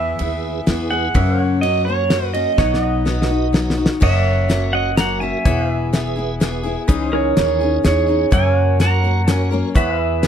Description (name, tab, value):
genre	honky-tonk and classic country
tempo	126 BPM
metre	3/4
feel	straight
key	unclear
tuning	A4 = 440 Hz
part	pedal steel guitar	melody	0.0-10.3 s	G#4 to A#5	-20 LUFS	right 4 dB	none
part	picked steel-string acoustic guitar	accompaniment	0.0-10.3 s	F#2 to A#4	-22 LUFS	left 5 dB	none
part	pedal steel guitar	sustained chords	0.0-10.3 s	B4 to F#5	-30 LUFS	equal	none
part	upright bass	bass	0.0-10.3 s	E1 to F#2	-21 LUFS	equal	none
part	tonewheel organ	accompaniment	0.2-10.3 s	E4 to E5	-28 LUFS	right 6 dB	slow rotary speaker, overdrive, chorus vibrato
part	damped 70s drum kit	drums	0.2-10.3 s	crash cymbal, hi-hat, kick drum, ride cymbal, snare drum	-18 LUFS	left 1 dB	none
room	little or no reverb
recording	close, detailed microphones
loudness	-15 LUFS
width	side -8 dB against mid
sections	0.0-4.0 A section; 4.0-10.3 B section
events	drum fill 2.6-4.0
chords	0.0 E; 1.2 F#; 2.6 B; 4.0 F#; 5.5 E; 6.9 C#madd9; 8.3 F#; 9.8 E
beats	0.20 0.67 | 1.15 1.63 2.11 | 2.59 3.07 3.54 | 4.02 4.50 4.98 | 5.46 5.94 6.41 | 6.89 7.37 7.85 | 8.33 8.80 9.28 | 9.76 10.24